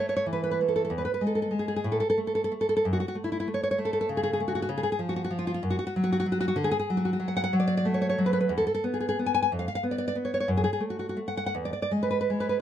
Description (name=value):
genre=romantic piece for solo classical guitar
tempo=51-66 BPM (dotted quarters)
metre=6/8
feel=rubato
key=unclear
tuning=A4 = 440 Hz
part: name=nylon-string guitar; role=solo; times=0.0-12.6 s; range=E2 to G#5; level=-25 LUFS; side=equal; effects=none
room=little or no reverb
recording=close, detailed microphones, lossy compression artefacts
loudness=-25 LUFS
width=side -10 dB against mid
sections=0.0-12.6 A section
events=none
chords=0.0 A5; 0.9 E; 1.9 N.C.; 2.8 F#m; 4.7 C#; 5.6 N.C.; 6.6 D; 8.5 E5; 9.5 C#7b9/E#; 10.5 F#m; 11.5 E